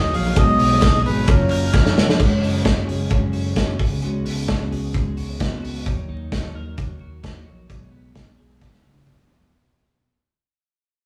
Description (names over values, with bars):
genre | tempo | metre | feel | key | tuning
jangly indie pop | 131 BPM | 4/4 | straight | F# major | A4 = 440 Hz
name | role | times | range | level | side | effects
melodica | melody | 0.0-1.9 s | A#4 to E#5 | -24 LUFS | equal | none
picked steel-string acoustic guitar | accompaniment | 0.0-9.5 s | F#2 to F#4 | -29 LUFS | equal | none
soft electric-piano-like synth keys | accompaniment | 0.0-2.2 s | A#3 to C#5 | -30 LUFS | equal | chorus
twelve-string electric guitar | arpeggios | 0.0-10.1 s | B2 to A#4 | -31 LUFS | equal | none
vintage muted fingered electric bass | bass | 0.0-9.5 s | E#1 to D#2 | -28 LUFS | equal | none
loose indie drum kit | drums | 0.1-9.5 s | crash cymbal, hi-hat, kick drum, ride cymbal, snare drum, toms | -22 LUFS | equal | none
group handclap | percussion | 0.8-1.8 s | none | -40 LUFS | equal | none
room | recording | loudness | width
moderate studio reverb, RT60 0.6 s | rough rehearsal-room recording, warm saturation, vinyl crackle, studio ambience | -19 LUFS | mono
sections
0.0-2.2 A section; 2.2-9.5 B section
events
drum fill 1.7-2.2, 8.6-9.5; fade-out 2.2-9.5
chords
0.4 B6; 1.3 F#maj7; 2.2 F#sus2; 3.8 C#7sus4; 5.9 D#m; 7.7 B6